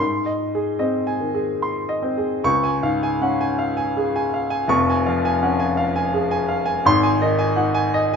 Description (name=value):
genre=classical, romantic character piece for solo piano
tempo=71-85 BPM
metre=3/4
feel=rubato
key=Db major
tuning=A4 = 440 Hz
part: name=bright grand piano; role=solo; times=0.0-8.2 s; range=F1 to Db6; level=-18 LUFS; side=equal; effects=none
room=moderate recital hall reverb, RT60 1.5 s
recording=nothing above 7.8 kHz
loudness=-18 LUFS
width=side -6 dB against mid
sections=0.0-2.4 A section; 2.4-8.2 B section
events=none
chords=0.0 Ab; 2.4 Db; 4.7 Db/F; 6.8 Ab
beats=0.81 1.62 | 2.44 3.21 3.94 | 4.69 5.42 6.12 | 6.84 7.58